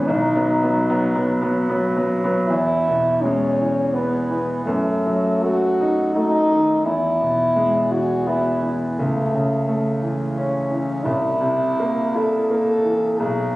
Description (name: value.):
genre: classical, romantic duo for French horn and grand piano.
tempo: 72-89 BPM.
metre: 3/4.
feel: rubato.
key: E major.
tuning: A4 = 440 Hz.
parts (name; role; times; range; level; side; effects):
warm French horn; melody; 0.0-13.6 s; A3 to A4; -20 LUFS; equal; none.
bright concert grand piano; accompaniment; 0.0-13.6 s; B1 to E4; -21 LUFS; equal; none.
room: moderate concert hall reverb, RT60 1.9 s.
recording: recorded on a phone in the room, studio reverb.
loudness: -18 LUFS.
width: side -18 dB against mid.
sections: 0.0-2.5 A section; 2.5-13.6 B section.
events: none.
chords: 0.1 B; 2.5 E; 4.7 D#dim/F#; 6.8 E; 9.0 A/C#; 11.1 C7.